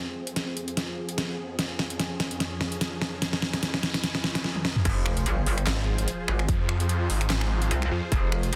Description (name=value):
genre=heavy wobble dubstep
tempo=147 BPM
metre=4/4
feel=swing 55% on 16ths, half-time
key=F minor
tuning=A4 = 440 Hz
part: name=supersaw pad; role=sustained chords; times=0.0-8.6 s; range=F2 to C5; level=-37 LUFS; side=equal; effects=phaser, sidechain pumping, low-pass filter
part: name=riser, noise sweep and sub drop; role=sound effects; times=0.6-6.5 s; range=none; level=-41 LUFS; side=equal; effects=none
part: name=dubstep drum kit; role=drums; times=0.3-8.6 s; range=crash cymbal, finger snaps, handclaps, hi-hat, snare drum, toms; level=-31 LUFS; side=equal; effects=overdrive
part: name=metallic wobble bass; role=bass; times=4.9-8.6 s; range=F1 to C2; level=-28 LUFS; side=equal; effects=chorus, overdrive
part: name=electronic kick drum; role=drums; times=4.9-8.2 s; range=none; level=-29 LUFS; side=equal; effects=overdrive
part: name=snarling distorted saw bass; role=bass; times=5.7-8.0 s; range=Ab1 to F2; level=-28 LUFS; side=equal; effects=distortion, overdrive
room=light reverb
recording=dense, heavily limited modern master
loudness=-27 LUFS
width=mono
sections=0.0-4.9 A section; 4.9-8.6 B section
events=build-up 0.0-4.9; drum fill 0.0-4.4, 4.4-4.9; filter sweep on supersaw synth 0.0-4.9; noise sweep 3.2-4.9; drop 4.9-8.6; impact 4.9-6.5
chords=0.0 Fm; 1.6 Db/F; 4.9 Fm